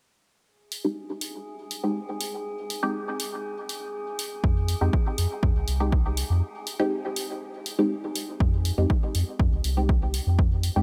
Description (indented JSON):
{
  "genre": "dub techno",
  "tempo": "121 BPM",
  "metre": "4/4",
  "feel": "straight",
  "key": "F minor",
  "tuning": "A4 = 440 Hz",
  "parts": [
    { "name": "metallic inharmonic drone", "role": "texture", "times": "0.9-8.4 s", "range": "Ab4", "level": "-41 LUFS", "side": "equal", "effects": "chorus, built-in reverb, sidechain pumping" },
    { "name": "electronic hi-hat", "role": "drums", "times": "0.7-10.7 s", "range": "none", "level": "-35 LUFS", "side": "equal", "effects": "none" },
    { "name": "filtered dub chord stab", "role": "stabs", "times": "0.8-10.8 s", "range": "Ab3 to G4", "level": "-32 LUFS", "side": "equal", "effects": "chorus, phaser, sidechain pumping, dub echo" },
    { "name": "soft dub sub bass", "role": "bass", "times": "4.4-10.8 s", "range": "C2 to F2", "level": "-27 LUFS", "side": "equal", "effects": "sidechain pumping" },
    { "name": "electronic kick drum", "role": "drums", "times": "4.4-10.5 s", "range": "none", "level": "-26 LUFS", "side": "equal", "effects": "none" }
  ],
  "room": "light reverb",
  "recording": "none",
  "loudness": "-27 LUFS",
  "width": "mono",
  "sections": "0.5-8.4 A section; 8.4-10.8 B section",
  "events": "filter sweep on synth stab 0.5-8.4; break 6.4-8.4",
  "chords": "0.5 Fm7 (rootless); 8.4 Fm7",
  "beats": "| 0.47 0.97 1.46 1.96 | 2.45 2.95 3.44 3.94 | 4.44 4.93 5.43 5.92 | 6.42 6.92 7.41 7.91 | 8.40 8.90 9.40 9.89 | 10.39"
}